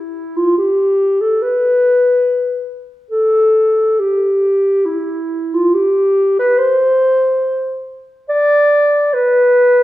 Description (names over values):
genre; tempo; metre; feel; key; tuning
classical, free, expressive piece for unaccompanied clarinet; 70 BPM; 3/4; uneven beats, rubato; unclear; A4 = 440 Hz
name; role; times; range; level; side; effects
dark clarinet; solo; 0.0-9.8 s; E4 to D5; -12 LUFS; equal; none
room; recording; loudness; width
wet recital hall reverb, RT60 1.4 s; heard from further back in the room; -12 LUFS; side -15 dB against mid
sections
0.0-9.8 A section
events
none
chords
none